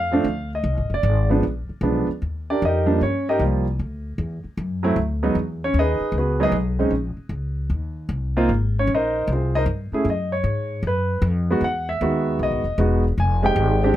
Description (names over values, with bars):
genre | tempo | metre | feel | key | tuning
jazz | 153 BPM | 4/4 | swing 66% on 8ths | unclear | A4 = 439 Hz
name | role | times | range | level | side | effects
warm grand piano | melody | 0.0-14.0 s | D#3 to Ab5 | -21 LUFS | right 1 dB | none
upright bass | bass | 0.0-14.0 s | E1 to Ab2 | -23 LUFS | left 1 dB | none
room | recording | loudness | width
little or no reverb | close, detailed microphones | -20 LUFS | side -13 dB against mid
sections
0.0-2.2 A section; 2.2-14.0 A section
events
grand piano solo 0.0-14.0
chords
0.0 Bb (rootless); 0.6 Fm; 1.4 Bb7b9; 2.2 Ebmaj7; 3.8 Dadd9; 5.4 Emaj9; 6.9 Bbm; 7.7 N.C.; 8.5 Abadd9; 10.1 Gb5; 10.8 B5; 11.6 Emaj7; 13.2 Fm9